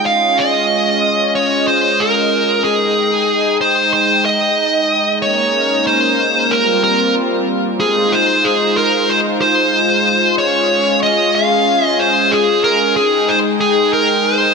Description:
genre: synthwave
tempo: 93 BPM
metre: 4/4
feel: straight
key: F minor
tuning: A4 = 440 Hz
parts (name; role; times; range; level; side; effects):
- dark smooth lead guitar; melody; 0.0-14.5 s; Ab4 to F5; -13 LUFS; equal; overdrive, tape echo
- warm analog pad; sustained chords; 0.0-14.5 s; G3 to G5; -17 LUFS; left 1 dB; chorus
room: moderate lush hall reverb, RT60 2.7 s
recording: none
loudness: -12 LUFS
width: side -4 dB against mid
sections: 0.0-7.8 A section; 7.8-14.5 B section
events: break 7.2-7.8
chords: 0.1 Db; 2.6 Ab5; 5.2 Eb7sus4; 6.5 C7sus4; 7.8 Fm7; 10.4 Db; 13.0 Abmaj7

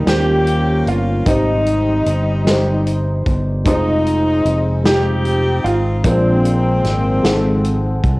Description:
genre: slow gospel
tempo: 50 BPM (dotted quarters)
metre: 6/8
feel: straight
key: unclear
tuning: A4 = 440 Hz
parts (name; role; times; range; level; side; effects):
- clear grand piano; melody; 0.0-8.0 s; C4 to G4; -22 LUFS; right 2 dB; none
- clear saxophone section; melody; 0.0-8.0 s; F3 to G4; -19 LUFS; left 1 dB; analog delay
- dark upright piano; accompaniment; 0.0-8.2 s; Ab2 to Gb5; -21 LUFS; equal; cassette tape
- fingered electric bass; bass; 0.0-8.2 s; F1 to Eb2; -18 LUFS; equal; none
- natural country drum kit; drums; 0.1-8.2 s; hi-hat, kick drum, snare drum; -20 LUFS; equal; none
room: light reverb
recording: home recording on cassette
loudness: -13 LUFS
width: side -22 dB against mid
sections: 0.0-8.2 A section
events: none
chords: 0.1 Eb13; 1.3 Abmaj7; 3.7 Fm7; 6.0 Bb7; 7.2 Ab7b9

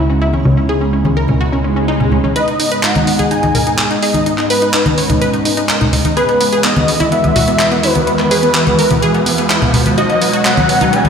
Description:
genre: progressive house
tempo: 126 BPM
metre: 4/4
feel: straight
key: G# minor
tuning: A4 = 437 Hz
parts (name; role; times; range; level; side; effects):
- airy breathy pad; sustained chords; 0.0-11.1 s; E2 to D#5; -19 LUFS; right 2 dB; chorus
- wide unison pluck; arpeggios; 0.0-11.1 s; B3 to C#5; -18 LUFS; equal; ping-pong delay
- plucky analog bass; bass; 0.0-2.3 s; C#2; -17 LUFS; equal; none
- backwards swelling texture; texture; 0.0-2.4 s; C#5; -36 LUFS; right 1 dB; none
- congas; percussion; 0.3-11.1 s; none; -17 LUFS; left 2 dB; none
- swell and riser; sound effects; 1.6-11.1 s; none; -21 LUFS; equal; none
- wide unison lead; melody; 2.4-11.1 s; B4 to G#5; -16 LUFS; equal; dub echo
- house drum kit; drums; 2.4-11.1 s; handclaps, hi-hat; -18 LUFS; right 1 dB; none
room: moderate lush hall reverb, RT60 1.8 s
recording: played on a big sound system in a bare room, stone room reverb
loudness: -11 LUFS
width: side -6 dB against mid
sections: 0.0-2.4 A section; 2.4-11.1 B section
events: filter sweep on synth pluck 0.0-2.4; filter sweep on analog synth pad 0.0-2.4; swell 1.6-2.4; build-up 2.4-11.1; riser 2.4-11.1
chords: 0.0 C#m7; 2.4 G#m; 6.2 Eadd9; 10.0 B6

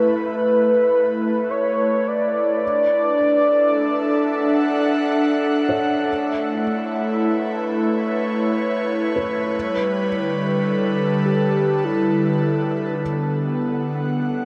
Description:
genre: ambient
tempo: 52 BPM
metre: 3/4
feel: straight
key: unclear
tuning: A4 = 440 Hz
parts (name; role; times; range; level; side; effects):
- warm velvety synth lead; melody; 0.0-5.5, 11.3-14.4 s; C#4 to D5; -23 LUFS; equal; chorus, diffuse ambient delay
- airy breathy pad; sustained chords; 0.0-14.4 s; D3 to F#5; -22 LUFS; equal; chorus
- felt-muted upright piano; arpeggios; 0.0-13.0 s; B4 to C#6; -35 LUFS; equal; diffuse ambient delay
room: wet huge ambient reverb, RT60 8.2 s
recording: dark, warm production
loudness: -20 LUFS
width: mono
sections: 0.0-13.0 A section; 13.0-14.4 B section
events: fade-in on felt piano 0.0-13.0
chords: 0.0 Aadd9; 2.6 Dmaj9; 6.1 Aadd9; 9.5 Gadd9; 13.0 Bm7

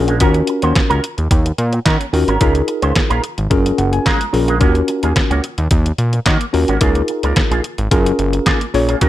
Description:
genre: early-eighties boogie funk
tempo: 109 BPM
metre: 4/4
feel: straight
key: Eb minor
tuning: A4 = 445 Hz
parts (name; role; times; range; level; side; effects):
- mellow tine electric piano; accompaniment; 0.0-9.1 s; Db4 to Bb5; -18 LUFS; left 2 dB; medium stereo tremolo
- fat analog bass; bass; 0.0-9.1 s; Gb1 to Eb3; -17 LUFS; equal; none
- electric guitar with an envelope filter; riff; 0.1-9.1 s; Ab3 to C5; -22 LUFS; right 4 dB; analog chorus
- detuned 8-bit digital drum machine; drums; 0.1-9.1 s; handclaps, hi-hat, kick drum, snare drum; -16 LUFS; equal; none
room: light reverb, digital ambience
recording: none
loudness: -13 LUFS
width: side -14 dB against mid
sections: 0.0-9.1 A section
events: tine electric piano fill 3.5-4.6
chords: 0.2 Ebm7; 2.4 Db6; 3.5 Gbmaj9; 4.6 Ebm7; 6.8 Db6; 7.9 Gbmaj9

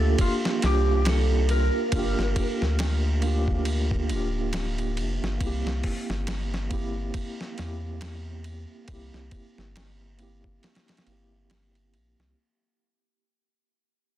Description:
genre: trip hop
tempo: 69 BPM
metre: 4/4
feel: swing 58% on 16ths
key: unclear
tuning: A4 = 440 Hz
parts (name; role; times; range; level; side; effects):
- clean lap steel guitar; melody; 0.0-3.2 s; F4 to Bb4; -31 LUFS; right 3 dB; vintage 12-bit sampler grit, tape echo
- mellow tine electric piano; accompaniment; 0.0-12.4 s; Bb3 to G4; -31 LUFS; right 1 dB; medium stereo tremolo, low-pass filter, tape echo
- warm sub bass; bass; 0.0-12.3 s; D1 to E2; -26 LUFS; equal; tube saturation
- dusty soul sampler-style drum kit; drums; 0.2-12.4 s; hi-hat, kick drum, ride cymbal, snare drum; -31 LUFS; equal; none
room: moderate spring reverb, RT60 2.2 s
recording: dense, heavily limited modern master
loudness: -24 LUFS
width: side -13 dB against mid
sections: 0.0-12.4 A section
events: fade-out 0.0-12.4; filter sweep on tine electric piano 0.0-12.4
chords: 0.0 Gm7; 5.4 C7

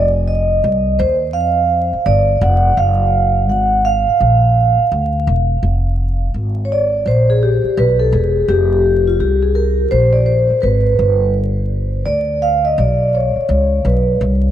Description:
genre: hip hop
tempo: 84 BPM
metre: 4/4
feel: swing 62% on 16ths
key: F dorian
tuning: A4 = 439 Hz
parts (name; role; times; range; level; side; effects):
- vibraphone with soft mallets; accompaniment; 0.0-14.2 s; F4 to Gb5; -15 LUFS; right 1 dB; none
- upright bass; bass; 0.0-14.5 s; E1 to F2; -16 LUFS; equal; none
room: moderate huge ambient reverb, RT60 5.2 s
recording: dreamy mix soaked in reverb, vinyl crackle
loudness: -12 LUFS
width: side -11 dB against mid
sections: 0.0-5.6 A section; 5.6-14.5 B section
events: vibraphone solo 0.0-5.6, 5.6-14.5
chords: 0.0 F5; 2.1 G5; 2.8 Gbmaj7(no3); 4.2 Bb; 5.6 Fm; 7.8 Eadd11; 8.5 Bbsus2/F; 11.0 G; 13.5 Bsus2

